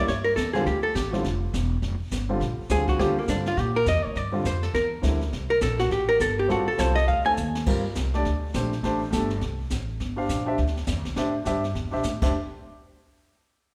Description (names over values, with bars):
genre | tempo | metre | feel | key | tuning
jazz, small-group swing and bop | 206 BPM | 4/4 | swing 61% on 8ths | unclear | A4 = 441 Hz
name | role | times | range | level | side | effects
archtop guitar, miked and amplified | melody | 0.0-7.3 s | Bb3 to Ab5 | -27 LUFS | equal | none
warm baby grand piano | accompaniment | 0.0-12.3 s | D3 to F5 | -31 LUFS | equal | none
upright bass | bass | 0.0-12.3 s | E1 to Bb2 | -30 LUFS | equal | none
jazz brush drum kit | drums | 0.1-12.3 s | brushed snare drum, crash cymbal, hi-hat, kick drum, snare drum | -35 LUFS | equal | none
room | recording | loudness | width
moderate recital hall reverb, RT60 1.4 s | recorded in a church or concert hall | -25 LUFS | mono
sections
0.0-7.7 A section; 7.7-12.3 B section; 12.3-13.5 C section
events
drum fill 7.4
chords
0.0 A7; 0.7 Dmadd9; 1.8 Fsus2; 2.4 Bb69; 3.0 Ebmaj9; 4.2 G5; 4.7 C9; 5.3 Gmadd9; 6.5 Am7; 7.1 D5; 7.7 Gm9; 8.2 D7sus4; 8.8 Am7; 9.4 Am; 10.0 Gm7; 10.6 Dsus2; 11.2 Am7; 11.7 C13; 12.2 Fsus2; 12.3 N.C.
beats
0.07 0.36 | 0.66 0.95 1.24 1.53 | 1.82 2.12 2.41 2.70 | 2.99 3.28 3.58 3.87 | 4.16 4.45 4.74 5.03 | 5.33 5.62 5.91 6.20 | 6.49 6.79 7.08 7.37 | 7.66 7.95 8.24 8.54 | 8.83 9.12 9.41 9.70 | 9.99 10.29 10.58 10.87 | 11.16 11.45 11.74 12.04